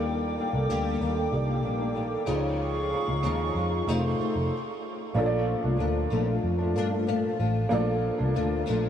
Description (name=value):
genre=indie pop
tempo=94 BPM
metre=4/4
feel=straight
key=Bb major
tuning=A4 = 443 Hz
part: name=dark upright piano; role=accompaniment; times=0.0-8.9 s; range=Ab3 to D5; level=-32 LUFS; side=right 3 dB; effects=cassette tape
part: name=flamenco guitar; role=accompaniment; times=0.0-8.9 s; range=F2 to Eb4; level=-29 LUFS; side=left 4 dB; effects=analog chorus, vibrato effect
part: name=hollow soft pad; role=sustained chords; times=0.0-4.5 s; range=Ab4 to D6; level=-33 LUFS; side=right 2 dB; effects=chorus
part: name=vintage muted fingered electric bass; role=bass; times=0.0-8.9 s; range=F1 to G2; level=-29 LUFS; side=equal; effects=none
room=moderate huge ambient reverb, RT60 7.8 s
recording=dreamy mix soaked in reverb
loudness=-25 LUFS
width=side -9 dB against mid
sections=0.0-5.2 A section; 5.2-8.9 B section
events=stop 4.5-5.2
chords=0.0 Ebmaj7; 2.3 Dbadd9; 3.9 F7; 5.2 Bbmaj7